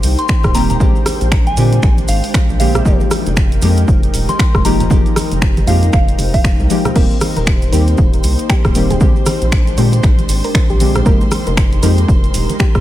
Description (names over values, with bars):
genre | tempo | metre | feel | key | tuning
deep house | 117 BPM | 4/4 | swing 60% on 16ths | F dorian | A4 = 439 Hz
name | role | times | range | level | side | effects
hollow soft pad | sustained chords | 0.0-12.8 s | Ab3 to C5 | -26 LUFS | equal | chorus, sidechain pumping
deep mellow chord stab | stabs | 0.0-12.8 s | D3 to G4 | -20 LUFS | left 1 dB | chorus, sidechain pumping
rubbery square bass | bass | 0.0-12.8 s | Eb1 to Bb2 | -16 LUFS | equal | sidechain pumping
punchy analog drum machine | drums | 0.0-12.8 s | crash cymbal, finger snaps, hi-hat, rim click | -22 LUFS | equal | none
congas | percussion | 0.0-12.8 s | none | -24 LUFS | right 3 dB | none
maracas | percussion | 0.0-12.8 s | none | -30 LUFS | right 5 dB | none
ethereal airy pad | texture | 0.0-12.8 s | Ab3 to G5 | -26 LUFS | left 1 dB | ensemble chorus, built-in reverb, sidechain pumping
soft synth bell | melody | 0.2-6.9 s | F5 to C6 | -24 LUFS | left 1 dB | chorus, phaser, vintage 12-bit sampler grit, dub echo
electronic kick drum | drums | 0.3-12.8 s | none | -14 LUFS | equal | none
soft round pluck | melody | 7.0-12.8 s | G4 to C5 | -26 LUFS | right 1 dB | chorus, digital delay
rich chamber violin section | texture | 7.0-12.8 s | C5 to C6 | -31 LUFS | right 1 dB | none
room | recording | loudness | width
digital ambience | none | -11 LUFS | side -14 dB against mid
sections
0.0-12.8 A section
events
none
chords
0.0 Eb6; 0.8 Bb13; 2.9 Fm11; 7.0 Eb6; 9.0 Bb13; 11.1 Fm11